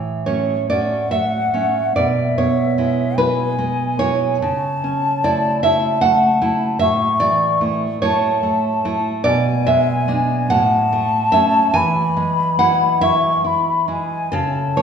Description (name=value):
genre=romantic duo for flute and classical guitar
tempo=44-52 BPM (dotted quarters)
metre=6/8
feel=rubato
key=A major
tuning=A4 = 440 Hz
part: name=nylon-string guitar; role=accompaniment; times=0.0-14.8 s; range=A2 to G#5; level=-17 LUFS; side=right 2 dB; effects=none
part: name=concert flute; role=melody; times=0.7-14.8 s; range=E5 to C#6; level=-20 LUFS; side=left 3 dB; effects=none
room=wet recital hall reverb, RT60 1.6 s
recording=recorded in a church or concert hall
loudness=-15 LUFS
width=side -7 dB against mid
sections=0.0-14.8 A section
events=none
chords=0.0 A; 2.0 E/B; 4.4 A/C#; 6.8 A; 9.3 G#dim/B; 10.5 A; 11.8 E